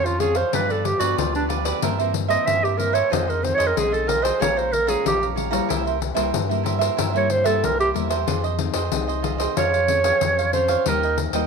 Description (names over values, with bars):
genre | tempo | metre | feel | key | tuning
samba and choro | 93 BPM | 4/4 | straight | F minor | A4 = 441 Hz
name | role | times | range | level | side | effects
breathy clarinet | melody | 0.0-11.2 s | D4 to E5 | -21 LUFS | right 2 dB | none
cavaquinho | accompaniment | 0.0-11.5 s | E4 to Bb5 | -26 LUFS | right 13 dB | none
nylon-string guitar | accompaniment | 0.0-11.5 s | F2 to Ab4 | -30 LUFS | left 13 dB | none
warm sub bass | bass | 0.0-11.5 s | Bb1 to G2 | -28 LUFS | equal | none
pandeiro | percussion | 0.1-11.5 s | none | -27 LUFS | left 14 dB | none
room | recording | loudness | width
light reverb, small room ambience | 1960s-style stereo with parts hard left and right | -19 LUFS | side -5 dB against mid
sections
0.0-11.5 A section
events
clarinet solo 0.0-11.5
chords
0.0 Dbmaj7/F; 0.5 G7; 1.8 C7/G; 3.1 Fm7; 4.4 Bbm7; 5.7 C7; 8.3 Fm7; 9.6 Dbmaj7/F; 10.9 Eb